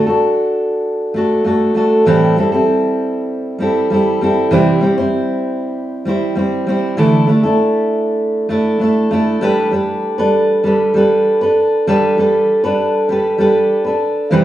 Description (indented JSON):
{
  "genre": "pop",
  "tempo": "98 BPM",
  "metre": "4/4",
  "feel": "straight",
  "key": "G major",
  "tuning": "A4 = 439 Hz",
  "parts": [
    { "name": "fingerpicked steel-string acoustic guitar", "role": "solo", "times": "0.0-14.4 s", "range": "A2 to C5", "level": "-12 LUFS", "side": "equal", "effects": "none" }
  ],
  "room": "wet small room reverb, RT60 0.5 s",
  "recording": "heard from further back in the room, small room reverb",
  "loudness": "-12 LUFS",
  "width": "side -13 dB against mid",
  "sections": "0.0-9.4 A section; 9.4-14.4 B section",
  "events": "none",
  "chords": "0.0 D; 2.1 Am7; 4.5 C; 7.0 Dsus2; 9.4 Gadd9"
}